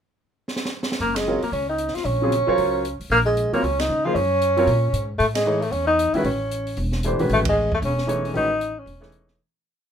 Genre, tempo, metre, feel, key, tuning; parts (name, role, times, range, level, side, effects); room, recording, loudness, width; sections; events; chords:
modal jazz; 229 BPM; 4/4; swing 60% on 8ths; A4 = 440 Hz
open jazz drum kit; drums; 0.5-9.3 s; hi-hat, kick drum, ride cymbal, snare drum; -32 LUFS; right 2 dB
mellow tenor saxophone; melody; 1.0-9.3 s; G#3 to F4; -21 LUFS; equal
upright bass; bass; 1.0-9.4 s; E1 to Db3; -26 LUFS; equal
clear upright piano; accompaniment; 1.3-9.4 s; Db3 to Db5; -23 LUFS; equal
light reverb; minimal, uncompressed stereo recording; -19 LUFS; side -8 dB against mid
0.0-1.0 pickup bar; 1.0-9.4 A section
drum fill 0.5-1.0; band accent 1.1, 3.8, 5.3, 7.4; fade-out 7.7-9.4
0.0 N.C.; 1.0 Gbmaj7; 5.2 Amaj7